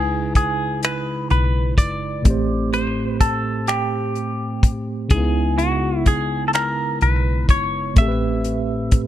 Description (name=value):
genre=slow six-eight R&B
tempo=42 BPM (dotted quarters)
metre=6/8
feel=straight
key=unclear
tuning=A4 = 442 Hz
part: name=semi-hollow electric guitar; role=melody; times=0.0-9.0 s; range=F#4 to E5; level=-23 LUFS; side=equal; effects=phaser, slapback echo
part: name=tine electric piano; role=accompaniment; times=0.0-9.1 s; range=A2 to C5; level=-23 LUFS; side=right 1 dB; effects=medium stereo tremolo
part: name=vintage muted fingered electric bass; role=bass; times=0.0-9.1 s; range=F#1 to C#2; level=-23 LUFS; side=equal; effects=none
part: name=damped 70s drum kit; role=drums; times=0.4-9.1 s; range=finger snaps, hi-hat, kick drum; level=-16 LUFS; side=equal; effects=none
room=light reverb, small room ambience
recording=dark, warm production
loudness=-18 LUFS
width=side -12 dB against mid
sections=0.0-9.1 A section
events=none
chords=0.0 C#m9; 2.2 Am9; 5.1 C#m9; 8.0 Am9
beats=0.82 | 2.25 3.68 | 5.11 6.54 | 7.96